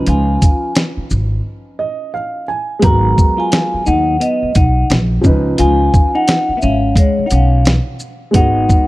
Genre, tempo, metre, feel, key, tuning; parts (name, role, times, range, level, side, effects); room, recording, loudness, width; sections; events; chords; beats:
hip hop, jazz-hop; 87 BPM; 4/4; swing 61% on 16ths; A4 = 442 Hz
dark grand piano; accompaniment; 0.0-8.9 s; E#3 to G#5; -20 LUFS; right 1 dB
vibraphone with soft mallets; melody; 0.1-8.9 s; C#5 to A#5; -18 LUFS; equal
semi-hollow electric guitar; second line; 0.1-8.9 s; G#3 to F#4; -20 LUFS; left 4 dB; lush chorus
upright bass; bass; 0.1-8.6 s; G#1 to D#2; -15 LUFS; equal
dusty soul sampler-style drum kit; drums; 0.1-8.9 s; hi-hat, kick drum, shaker, snare drum; -13 LUFS; equal
small room ambience; dark, warm production; -12 LUFS; side -18 dB against mid
0.0-8.9 A section
break 1.4-2.8; grand piano fill 1.4-2.8
0.0 C#9; 2.8 G#m9; 5.2 C#9; 8.3 G#m7
| 0.07 0.76 1.45 2.14 | 2.83 3.52 4.21 4.89 | 5.58 6.27 6.96 7.65 | 8.34